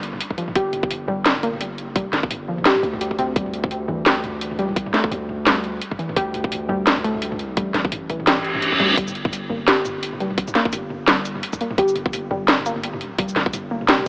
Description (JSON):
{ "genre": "half-time drum and bass", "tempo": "171 BPM", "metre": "4/4", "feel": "swing 57% on 16ths, half-time", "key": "G dorian", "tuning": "A4 = 437 Hz", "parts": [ { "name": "warbly dusty pluck", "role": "arpeggios", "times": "0.0-14.1 s", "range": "E3 to G4", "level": "-24 LUFS", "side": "equal", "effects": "chorus, digital delay" }, { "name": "long sustained 808-style bass", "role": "bass", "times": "0.0-14.1 s", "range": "G1 to D2", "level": "-30 LUFS", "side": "equal", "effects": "none" }, { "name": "drum and bass drum kit", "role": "drums", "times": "0.0-14.0 s", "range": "hi-hat, shaker, snare drum, toms", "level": "-20 LUFS", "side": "equal", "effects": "none" }, { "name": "electronic kick drum", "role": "drums", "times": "0.3-13.5 s", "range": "none", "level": "-23 LUFS", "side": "equal", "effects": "none" }, { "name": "reverse cymbal", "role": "sound effects", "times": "8.4-9.0 s", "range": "none", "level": "-21 LUFS", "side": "equal", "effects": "none" } ], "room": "moderate huge ambient reverb, RT60 5.6 s", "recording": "AM radio sound", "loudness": "-19 LUFS", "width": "side -31 dB against mid", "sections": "0.0-14.1 A section", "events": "reverse cymbal 8.4-9.0", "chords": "0.0 G5; 3.4 Dsus2; 9.0 Gm", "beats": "0.20 | 0.55 0.90 1.25 1.60 | 1.96 2.31 2.66 3.01 | 3.36 3.71 4.06 4.41 | 4.76 5.11 5.46 5.82 | 6.17 6.52 6.87 7.22 | 7.57 7.92 8.27 8.62 | 8.97 9.32 9.68 10.03 | 10.38 10.73 11.08 11.43 | 11.78 12.13 12.48 12.83 | 13.18 13.54 13.89" }